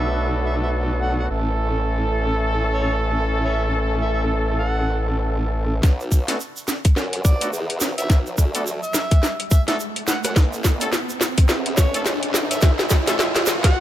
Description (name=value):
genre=glitch hop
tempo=106 BPM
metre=4/4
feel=swing 59% on 16ths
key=B minor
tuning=A4 = 440 Hz
part: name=overdriven harmonica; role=melody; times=0.0-13.8 s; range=C#5 to F#5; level=-30 LUFS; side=right 1 dB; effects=vintage 12-bit sampler grit, dub echo
part: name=clear horn section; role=stabs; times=0.0-13.2 s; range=A3 to A4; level=-26 LUFS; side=right 1 dB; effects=sidechain pumping, low-pass filter, dub echo
part: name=formant-sweep wobble bass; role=bass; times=0.0-13.8 s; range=A1 to F#2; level=-24 LUFS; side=equal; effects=chorus, tube saturation, high-pass filter
part: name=drum and bass drum kit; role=drums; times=5.8-13.7 s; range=hi-hat, rim click, snare drum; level=-23 LUFS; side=equal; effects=none
part: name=electronic kick drum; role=drums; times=5.8-13.7 s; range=none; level=-15 LUFS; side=equal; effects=none
part: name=tube shaker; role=percussion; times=5.8-13.7 s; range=none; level=-29 LUFS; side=right 5 dB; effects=none
part: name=riser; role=sound effects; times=8.1-13.8 s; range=none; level=-28 LUFS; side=right 1 dB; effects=none
room=light reverb, digital ambience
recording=none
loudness=-18 LUFS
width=side -13 dB against mid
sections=0.0-5.8 A section; 5.8-13.8 B section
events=build-up 5.8-13.8; drum fill 5.8-13.8; filter sweep on horn section 5.8-13.8; riser 8.1-13.8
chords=0.0 Bm7; 1.3 A; 5.8 Bm7; 10.4 A